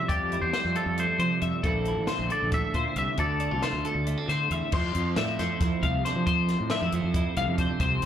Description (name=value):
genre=math rock and midwest emo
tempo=272 BPM (eighths)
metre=7/8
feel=straight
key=D minor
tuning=A4 = 439 Hz
part: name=twangy electric guitar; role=melody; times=0.0-4.5 s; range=A4 to E5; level=-30 LUFS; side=equal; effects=slapback echo, analog delay
part: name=twelve-string electric guitar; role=accompaniment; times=0.0-8.1 s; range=D2 to F4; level=-32 LUFS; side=right 9 dB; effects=spring reverb, slapback echo
part: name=twelve-string electric guitar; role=arpeggios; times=0.0-8.1 s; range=G4 to F5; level=-30 LUFS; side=left 6 dB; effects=lush chorus, slapback echo
part: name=fuzz fingered electric bass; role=bass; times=0.1-8.1 s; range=A1 to F3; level=-29 LUFS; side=equal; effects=overdrive
part: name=compact cocktail drum kit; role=drums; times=0.1-8.1 s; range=crash cymbal, hi-hat, kick drum, snare drum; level=-31 LUFS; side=equal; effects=none
room=little or no reverb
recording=live gig heard through the venue's PA, club reverb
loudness=-24 LUFS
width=side -9 dB against mid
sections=0.0-4.7 A section; 4.7-8.1 B section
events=none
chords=0.0 Fmaj9; 1.6 Bbmaj9#11; 3.2 Dm7